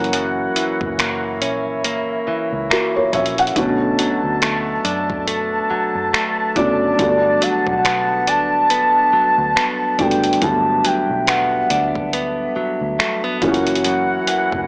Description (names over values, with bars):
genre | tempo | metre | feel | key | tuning
contemporary R&B | 70 BPM | 4/4 | swing 58% on 16ths | unclear | A4 = 440 Hz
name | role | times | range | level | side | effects
felt-muted upright piano | accompaniment | 0.0-14.7 s | D3 to A#5 | -21 LUFS | equal | none
clear woodwind section | sustained chords | 0.0-14.7 s | D3 to A5 | -23 LUFS | equal | none
direct-recorded clean electric guitar | arpeggios | 0.0-14.7 s | F#2 to D4 | -24 LUFS | equal | none
vintage muted fingered electric bass | bass | 0.0-14.7 s | F#1 to F#2 | -31 LUFS | equal | none
dusty soul sampler-style drum kit | drums | 0.0-14.7 s | finger snaps, hi-hat, kick drum | -21 LUFS | equal | none
gliding portamento lead | melody | 6.6-12.1 s | D5 to A5 | -17 LUFS | equal | chorus, tape echo
room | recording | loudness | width
light reverb, digital ambience | dry, gritty hardware recording, cassette tape, small speaker sound | -15 LUFS | side -33 dB against mid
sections
0.0-14.7 A section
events
none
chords
0.0 F#7; 3.6 Bm7; 7.0 Gmaj7; 13.4 F#7